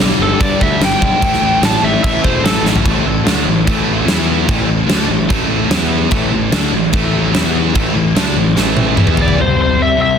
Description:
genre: hard rock.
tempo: 147 BPM.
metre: 4/4.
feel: straight.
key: A minor.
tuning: A4 = 436 Hz.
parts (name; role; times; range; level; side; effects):
overdriven semi-hollow guitar; riff; 0.0-10.2 s; G2 to E4; -19 LUFS; left 12 dB; none.
scooped high-gain guitar; riff; 0.0-9.4 s; G2 to E4; -20 LUFS; right 11 dB; distortion.
tight distorted guitar; riff; 0.0-9.4 s; G2 to E4; -22 LUFS; right 1 dB; distortion.
fuzz picked electric bass; bass; 0.0-9.3 s; E1 to G2; -19 LUFS; right 1 dB; overdrive.
huge arena drum kit; drums; 0.0-9.4 s; crash cymbal, kick drum, snare drum, toms; -16 LUFS; equal; none.
biting lead guitar; melody; 0.2-2.6, 9.2-10.2 s; A4 to A5; -17 LUFS; equal; overdrive, tape echo.
room: small room ambience.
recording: dense, heavily limited modern master.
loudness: -11 LUFS.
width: side -7 dB against mid.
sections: 0.0-2.8 A section; 2.8-9.4 B section.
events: lead electric guitar solo 0.0-2.8; drum fill 2.6, 8.6-9.4.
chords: 0.0 G; 1.2 A5; 4.1 E5; 4.5 A5; 5.7 E5; 6.1 A5; 7.3 E5; 7.8 A5; 9.0 E5; 9.4 C.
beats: 0.40 0.80 | 1.21 1.62 2.03 2.44 | 2.85 3.26 3.67 4.08 | 4.49 4.89 5.30 5.71 | 6.12 6.53 6.94 7.34 | 7.75 8.16 8.57 8.97 | 9.38 9.79.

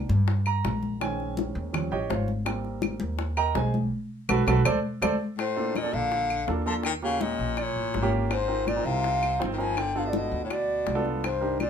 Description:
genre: Afro-Cuban jazz.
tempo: 164 BPM.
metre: 4/4.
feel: straight.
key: G minor from 5.4 s.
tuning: A4 = 443 Hz.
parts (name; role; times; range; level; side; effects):
warm grand piano; accompaniment; 0.0-11.6 s; Eb3 to Bb5; -30 LUFS; right 4 dB; none.
upright bass; bass; 0.0-11.7 s; G1 to G2; -29 LUFS; equal; none.
bongos; percussion; 0.1-11.7 s; none; -34 LUFS; left 6 dB; none.
congas; percussion; 0.1-11.7 s; none; -33 LUFS; left 3 dB; none.
claves; percussion; 0.5-11.7 s; none; -34 LUFS; left 1 dB; none.
bright reedy bansuri; melody; 5.4-11.7 s; C5 to A5; -29 LUFS; left 1 dB; none.
bright baritone saxophone; second line; 5.4-11.7 s; G2 to F3; -32 LUFS; left 5 dB; none.
room: moderate studio ambience, RT60 0.5 s.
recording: minimal, uncompressed stereo recording.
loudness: -24 LUFS.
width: side -7 dB against mid.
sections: 0.0-5.4 A section; 5.4-11.7 B section.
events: grand piano solo 0.0-5.4; band accent 3.9-5.4; drum fill 4.5-5.4.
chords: 0.0 C7(no3) (rootless); 1.0 Bbm11; 1.7 Eb13; 2.5 Abmaj9; 3.9 B5; 4.7 D5; 5.4 Bbmaj9; 6.8 Eb7; 8.3 Ab69; 9.8 G7.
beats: 0.28 0.64 | 1.01 1.37 1.74 2.10 | 2.47 2.83 3.20 3.56 | 3.93 4.29 4.66 5.02 | 5.39 5.75 6.12 6.48 | 6.85 7.21 7.58 7.95 | 8.31 8.68 9.04 9.41 | 9.78 10.14 10.51 10.87 | 11.24 11.60.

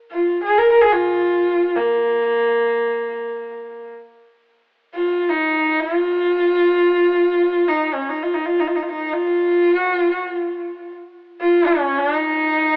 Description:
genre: mongolian traditional.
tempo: free time.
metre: none.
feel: none.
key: unclear.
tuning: A4 = 440 Hz.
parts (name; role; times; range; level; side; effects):
bright horsehead fiddle; solo; 0.1-12.8 s; Bb3 to Bb4; -16 LUFS; equal; cassette tape.
room: moderate spring reverb, RT60 2.6 s.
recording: home recording on cassette, telephone sound.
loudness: -15 LUFS.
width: side -36 dB against mid.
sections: 0.0-4.6 A section; 4.6-12.8 A section.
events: slowing down 10.4-12.8.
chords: none.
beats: free time.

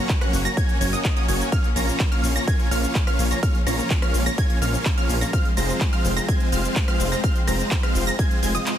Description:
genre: EDM, festival progressive house.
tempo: 126 BPM.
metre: 4/4.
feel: straight.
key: Bb minor.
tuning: A4 = 439 Hz.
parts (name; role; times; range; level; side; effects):
clear studio string section; sustained chords; 0.0-8.8 s; F3 to Db4; -31 LUFS; left 2 dB; sidechain pumping.
wide unison pluck; arpeggios; 0.0-8.7 s; Eb6 to Bb6; -30 LUFS; right 1 dB; sidechain pumping, ping-pong delay.
dense compressed supersaw; riff; 0.0-8.7 s; Ab3 to Bb5; -26 LUFS; right 1 dB; sidechain pumping, ping-pong delay.
big-room dance drum kit; drums; 0.1-8.8 s; handclaps, hi-hat, rim click, shaker; -30 LUFS; equal; overdrive.
electronic kick drum; drums; 0.1-8.3 s; none; -22 LUFS; equal; overdrive.
detuned saw bass; bass; 0.3-8.6 s; F1 to Bb1; -25 LUFS; equal; sidechain pumping.
room: digital ambience.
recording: dense, heavily limited modern master.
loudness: -19 LUFS.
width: side -10 dB against mid.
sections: 0.0-8.8 A section.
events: none.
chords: 0.0 Gb; 1.5 Bbm; 5.3 Fm.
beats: 0.09 0.57 1.05 | 1.52 2.00 2.48 2.95 | 3.43 3.90 4.38 4.86 | 5.33 5.81 6.28 6.76 | 7.24 7.71 8.19 8.66.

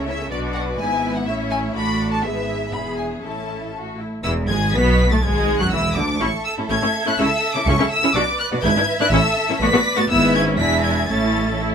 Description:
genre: quick classical-period movement for string orchestra.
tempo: 123 BPM.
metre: 2/4.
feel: rubato.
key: A major.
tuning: A4 = 439 Hz.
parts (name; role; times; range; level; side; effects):
warm studio violin section; melody; 0.0-11.6 s; D5 to B6; -22 LUFS; left 2 dB; none.
rich studio violin section; second line; 0.0-11.7 s; D4 to E5; -26 LUFS; equal; none.
clear studio viola section; accompaniment; 0.0-11.7 s; D3 to G#4; -23 LUFS; left 1 dB; none.
rich studio cello section; bass; 0.0-11.7 s; D2 to C#3; -25 LUFS; right 2 dB; none.
rich studio double bass section; bass; 0.0-11.7 s; E1 to D2; -24 LUFS; right 1 dB; none.
room: light reverb.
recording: minimal, uncompressed stereo recording.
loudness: -17 LUFS.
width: side -7 dB against mid.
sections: 0.0-4.2 A section; 4.2-11.7 A section.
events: none.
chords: 0.3 Bm; 0.8 E/G#; 1.3 A; 1.8 Bm7/A; 2.2 E/G#; 2.7 E; 3.2 A; 4.2 A5/E; 5.2 E7/G#; 6.2 A; 8.2 Bm; 8.6 E7/G#; 9.1 A; 9.6 Bm7/A; 10.1 E/G#; 10.6 E7; 11.1 A.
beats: | 0.31 0.79 | 1.27 1.75 | 2.24 2.73 | 3.23 3.74 | 4.25 4.74 | 5.23 5.73 | 6.22 6.71 | 7.19 7.67 | 8.15 8.64 | 9.13 9.61 | 10.10 10.59 | 11.10 11.61.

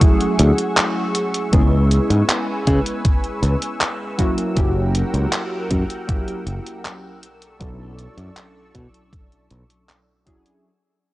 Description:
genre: vaporwave.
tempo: 79 BPM.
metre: 4/4.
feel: straight.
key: unclear.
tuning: A4 = 439 Hz.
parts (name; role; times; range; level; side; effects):
warbly lo-fi synth keys; accompaniment; 0.0-10.7 s; F#3 to A4; -24 LUFS; equal; analog chorus, tape echo.
lush unison pad; sustained chords; 0.0-10.6 s; G#4 to E6; -28 LUFS; equal; chorus, phaser, vintage 12-bit sampler grit.
detuned 8-bit digital drum machine; drums; 0.0-10.6 s; handclaps, hi-hat; -23 LUFS; equal; none.
electronic kick drum; drums; 0.0-10.4 s; none; -17 LUFS; equal; none.
modern bright fingered electric bass; bass; 0.4-9.6 s; F#1 to C#3; -17 LUFS; equal; tube saturation.
room: little or no reverb.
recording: dry, gritty hardware recording, transformer saturation, cassette tape, nothing above 10.5 kHz.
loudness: -17 LUFS.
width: side -18 dB against mid.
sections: 0.0-10.6 A section.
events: fade-out 0.0-10.6.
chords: 0.0 Dmaj9#11 (rootless); 1.5 C#m7; 4.2 F#7b9; 7.2 Bm11.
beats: 0.01 0.77 | 1.53 2.29 3.05 3.81 | 4.57 5.33 6.09 6.85 | 7.61 8.37 9.13 9.89.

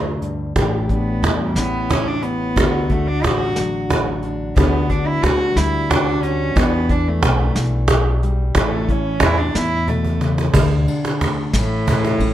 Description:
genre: acoustic folk duo or small band.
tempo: 60 BPM (dotted quarters).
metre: 6/8.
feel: straight.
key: D major.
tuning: A4 = 440 Hz.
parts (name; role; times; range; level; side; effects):
fingerpicked plugged-in steel-string acoustic guitar; accompaniment; 0.0-12.3 s; F#2 to A4; -24 LUFS; left 2 dB; none.
upright bass; bass; 0.0-12.3 s; A1 to E2; -21 LUFS; equal; none.
vintage brush drum kit; drums; 0.2-12.3 s; crash cymbal, hi-hat, kick drum, ride cymbal, snare drum; -23 LUFS; equal; none.
cajon; percussion; 0.6-12.2 s; none; -20 LUFS; right 2 dB; none.
warm cello; melody; 0.9-12.3 s; A2 to F#4; -22 LUFS; equal; none.
room: light reverb.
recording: none.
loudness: -16 LUFS.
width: side -12 dB against mid.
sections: 0.0-10.6 A section; 10.6-12.3 B section.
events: cello solo 0.0-10.6; drum fill 9.9-10.6.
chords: 0.0 Gsus2; 0.6 A7sus4; 1.6 A7; 2.6 D; 4.6 Gmaj7/D; 6.6 Em7; 8.6 A; 10.6 D5; 11.5 A.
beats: | 0.57 1.57 | 2.57 3.57 | 4.57 5.57 | 6.57 7.57 | 8.56 9.56 | 10.55 11.55.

